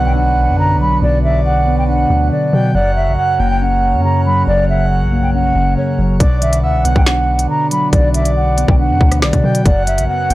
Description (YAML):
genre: hip hop, drill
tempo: 139 BPM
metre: 4/4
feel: half-time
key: B harmonic minor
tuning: A4 = 440 Hz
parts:
  - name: mellow hollow concert flute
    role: melody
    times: 0.0-10.3 s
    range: C#5 to B5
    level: -17 LUFS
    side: right 1 dB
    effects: low-pass filter
  - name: breathy flute-like synth lead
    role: second line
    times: 0.0-10.3 s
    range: D5 to G5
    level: -24 LUFS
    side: left 1 dB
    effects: chorus, tremolo, tape echo
  - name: mellow tine electric piano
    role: accompaniment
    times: 0.0-10.3 s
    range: F#2 to D4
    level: -18 LUFS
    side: equal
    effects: analog chorus, low-pass filter
  - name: hand-pumped harmonium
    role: sustained chords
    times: 0.0-10.3 s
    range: F#3 to F#5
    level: -26 LUFS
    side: right 2 dB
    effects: none
  - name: long sustained 808-style bass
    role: bass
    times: 0.0-10.3 s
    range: F#1 to B2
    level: -16 LUFS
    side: equal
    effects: none
  - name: impact and swell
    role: sound effects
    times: 0.0-1.0, 9.9-10.3 s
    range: none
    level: -30 LUFS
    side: left 1 dB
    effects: none
  - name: drill drum kit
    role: drums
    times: 6.2-10.3 s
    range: hi-hat, kick drum, rim click, snare drum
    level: -14 LUFS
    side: equal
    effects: none
room: little or no reverb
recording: dry, gritty hardware recording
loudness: -11 LUFS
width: side -17 dB against mid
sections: 0.0-10.3 A section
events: impact 0.0-1.0; swell 9.9-10.3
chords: 0.0 Bm; 2.7 F#; 6.2 Bm; 9.7 F#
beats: 0.16 0.59 | 1.02 1.45 1.89 2.32 | 2.75 3.18 3.61 4.04 | 4.48 4.91 5.34 5.77 | 6.20 6.63 7.07 7.50 | 7.93 8.36 8.79 9.22 | 9.65 10.09